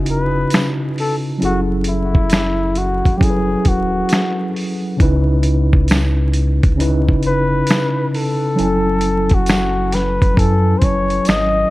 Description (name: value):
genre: lo-fi hip hop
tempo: 67 BPM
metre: 4/4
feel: swing 66% on 16ths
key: unclear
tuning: A4 = 440 Hz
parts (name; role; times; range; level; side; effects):
- mellow tine electric piano; accompaniment; 0.0-11.7 s; C#3 to G#5; -19 LUFS; equal; medium stereo tremolo, cassette tape, low-pass filter
- mellow flugelhorn; melody; 0.1-11.7 s; E4 to D#5; -20 LUFS; left 2 dB; low-pass filter
- sub bass with octave; bass; 0.1-11.6 s; D#1 to F#2; -20 LUFS; equal; none
- dusty soul sampler-style drum kit; drums; 0.1-11.6 s; finger snaps, hi-hat, kick drum, snare drum; -17 LUFS; equal; none
- tambourine; percussion; 0.5-11.5 s; none; -37 LUFS; right 5 dB; none
room: light reverb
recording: vinyl crackle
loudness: -14 LUFS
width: side -18 dB against mid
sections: 0.0-11.7 A section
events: none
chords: 0.0 C#m7; 1.4 F#m7; 5.0 C#m7; 8.6 F#m7